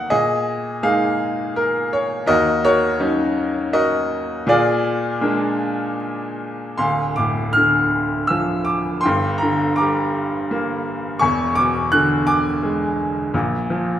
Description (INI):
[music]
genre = classical, lyrical solo piano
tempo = 75-86 BPM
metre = 3/4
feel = rubato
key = D minor from 6.8 s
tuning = A4 = 442 Hz
[part]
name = bright upright piano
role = solo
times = 0.0-14.0 s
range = D1 to F#6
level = -17 LUFS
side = equal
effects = none
[sound]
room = wet recital hall reverb, RT60 1.4 s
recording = recorded in a church or concert hall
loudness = -17 LUFS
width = side -11 dB against mid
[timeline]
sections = 0.0-6.8 A section; 6.8-14.0 B section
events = none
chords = 0.1 Bb7sus4; 2.3 Ebm7; 4.5 Bb7; 6.8 Dm; 9.0 Gm; 11.2 E7; 13.3 Bb